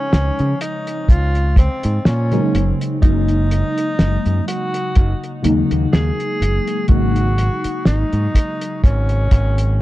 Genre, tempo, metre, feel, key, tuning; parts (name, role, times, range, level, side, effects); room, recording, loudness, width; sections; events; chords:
vaporwave; 62 BPM; 4/4; swing 55% on 16ths; A4 = 440 Hz
warm tenor saxophone; melody; 0.0-9.8 s; C4 to Ab4; -24 LUFS; equal; tape echo
mellow FM electric piano; accompaniment; 0.0-9.8 s; Db3 to C5; -22 LUFS; left 1 dB; phaser, ensemble chorus, cassette tape
modern bright fingered electric bass; bass; 0.1-9.8 s; Gb1 to Db3; -17 LUFS; equal; tube saturation
cloth-damped thuddy drum kit; drums; 0.1-9.8 s; hi-hat, snare drum; -19 LUFS; equal
kick drum; drums; 1.1-9.5 s; -12 LUFS; equal
small room reverb; dark, warm production, cassette tape; -15 LUFS; side -16 dB against mid
0.0-9.8 A section
0.0 Dbmaj9; 2.5 Gb69; 6.9 Ab9sus4